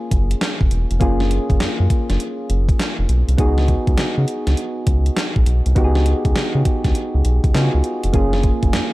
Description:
R&B, new jack swing; 101 BPM; 4/4; swing 65% on 16ths; F# major; A4 = 439 Hz
soft electric-piano-like synth keys; accompaniment; 0.0-8.9 s; A#3 to G#4; -23 LUFS; equal; chorus
round analog bass; bass; 0.1-8.8 s; E1 to C#3; -17 LUFS; equal
gated 80s digital drum machine; drums; 0.1-8.9 s; handclaps, hi-hat, kick drum, snare drum; -19 LUFS; equal; gated reverb, gated reverb snare, overdrive
digital ambience; dark, warm production; -15 LUFS; side -18 dB against mid
0.0-8.9 A section
0.0 F#maj9; 3.4 C#7sus4; 8.1 F#maj9

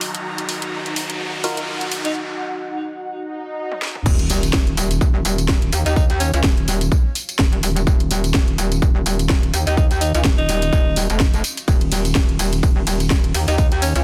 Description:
bass house; 126 BPM; 4/4; swing 56% on 16ths; Eb minor; A4 = 437 Hz
dark analog pad; sustained chords; 0.0-14.0 s; Eb4 to Gb5; -35 LUFS; equal; chorus, sidechain pumping
garage drum kit; drums; 0.0-14.0 s; crash cymbal, hi-hat, ride cymbal, snare drum, tambourine, toms; -26 LUFS; equal; overdrive, studio reverb
riser, swell and sub drop; sound effects; 0.0-6.0 s; -30 LUFS; equal
clear studio string section; texture; 0.0-2.2 s; Eb4 to Bb5; -34 LUFS; equal; sidechain pumping
percussive organ stab; stabs; 1.4-1.6 s; Eb4 to Bb4; -30 LUFS; equal; chorus, sidechain pumping, digital delay
raspy alto saxophone; melody; 2.0-2.1, 5.9-6.4, 9.7-14.0 s; Db4 to Eb4; -27 LUFS; equal; digital delay
metallic wobble bass; bass; 4.1-14.0 s; Eb1 to Eb2; -22 LUFS; equal; chorus, tube saturation, sidechain pumping
electronic kick drum; drums; 4.1-13.7 s; -19 LUFS; equal; studio reverb
little or no reverb; dense, heavily limited modern master, high-pass filter; -19 LUFS; mono
0.0-4.1 A section; 4.1-14.0 B section
build-up 0.0-4.1; riser 0.0-2.2; filter sweep on analog synth pad 0.0-4.1; filter sweep 0.0-4.1; break 2.2-4.1; swell 3.2-4.1; drum fill 3.7-4.1; drop 4.1-14.0; impact 4.1-6.0
0.0 Ebmadd9

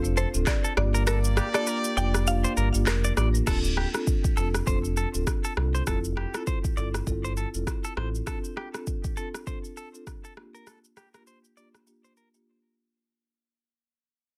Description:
afrobeats; 100 BPM; 4/4; swing 58% on 16ths; D minor; A4 = 440 Hz
clear horn section; second line; 0.0-3.1 s; A3 to D5; -37 LUFS; equal; plate reverb
marimba with soft mallets; accompaniment; 0.0-12.5 s; Bb3 to A4; -36 LUFS; equal; plate reverb
sub bass with octave; bass; 0.0-8.2 s; D1 to C2; -28 LUFS; equal
afro-pop drum kit; drums; 0.0-12.5 s; crash cymbal, handclaps, kick drum, rim click, shaker; -32 LUFS; equal; soft clipping on snare
mallet-like synth pluck; melody; 0.2-3.3 s; Bb4 to G5; -35 LUFS; equal; chorus, plate reverb, digital delay
direct-recorded clean electric guitar; riff; 0.2-12.3 s; G4 to D5; -37 LUFS; equal; digital delay
light reverb; dense, heavily limited modern master; -27 LUFS; mono
0.0-3.5 A section; 3.5-13.1 B section
kick muted 1.1-3.5; fade-out 3.5-13.1; break 12.5-13.1
0.0 Dm7; 0.8 Gm7; 3.5 Dm7; 5.9 Fmaj7; 8.3 Dm7; 10.4 Gm7

